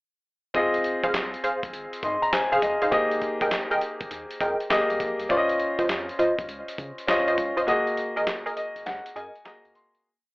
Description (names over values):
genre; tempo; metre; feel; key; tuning
R&B, new jack swing; 101 BPM; 4/4; swing 66% on 16ths; Ab mixolydian; A4 = 440 Hz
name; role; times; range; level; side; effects
warm concert grand piano; accompaniment; 0.5-10.1 s; Bb3 to C6; -25 LUFS; left 1 dB; none
round analog bass; bass; 0.5-10.0 s; F1 to Db3; -46 LUFS; equal; none
dusty soul sampler-style drum kit; drums; 0.5-10.0 s; handclaps, hi-hat, kick drum, snare drum; -31 LUFS; equal; overdrive
funky polysynth comp; stabs; 1.0-9.3 s; F4 to G5; -26 LUFS; equal; chorus
room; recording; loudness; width
light reverb, digital ambience; telephone sound; -22 LUFS; side -24 dB against mid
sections
0.5-10.1 verse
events
break 7.7-10.1; fade-out 7.7-10.1; grand piano fill 8.3-10.1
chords
0.5 Ab6; 2.9 Fm11; 5.3 Dbmaj9; 7.7 Gb69